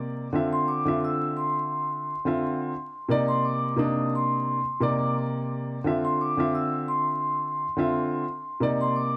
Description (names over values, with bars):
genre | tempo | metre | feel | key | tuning
hip hop | 87 BPM | 4/4 | swing 55% on 16ths | unclear | A4 = 442 Hz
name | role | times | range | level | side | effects
dark baby grand piano | accompaniment | 0.0-9.2 s | C3 to E5 | -28 LUFS | equal | cassette tape
vibraphone with soft mallets | melody | 0.5-9.2 s | C6 to E6 | -31 LUFS | equal | digital delay
room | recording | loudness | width
light reverb, small room ambience | vinyl crackle | -27 LUFS | mono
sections
0.0-9.2 A section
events
none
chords
0.3 Dm9; 3.1 Cm9; 5.9 Dm9; 8.6 Cm9